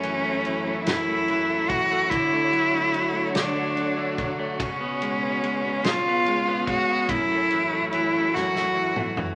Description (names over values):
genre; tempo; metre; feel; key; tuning
six-eight pop ballad; 48 BPM (dotted quarters); 6/8; straight; F# minor; A4 = 440 Hz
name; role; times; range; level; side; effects
rich cello; melody; 0.0-9.3 s; C#4 to F#4; -26 LUFS; equal; none
direct-recorded clean electric guitar; accompaniment; 0.0-9.3 s; F#2 to B3; -32 LUFS; equal; none
warm studio string section; sustained chords; 0.0-9.3 s; A2 to E#5; -34 LUFS; equal; none
natural country drum kit; drums; 0.0-9.3 s; kick drum, ride cymbal, snare drum, toms; -33 LUFS; equal; none
room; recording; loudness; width
wet studio reverb, RT60 0.7 s; none; -24 LUFS; mono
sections
0.0-9.3 A section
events
drum fill 8.3-9.3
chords
0.0 F#m7; 2.1 Dmaj7; 4.6 C#7sus4; 5.8 C#7; 7.1 F#m7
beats
0.86 | 2.11 3.35 | 4.60 5.84 | 7.09 8.33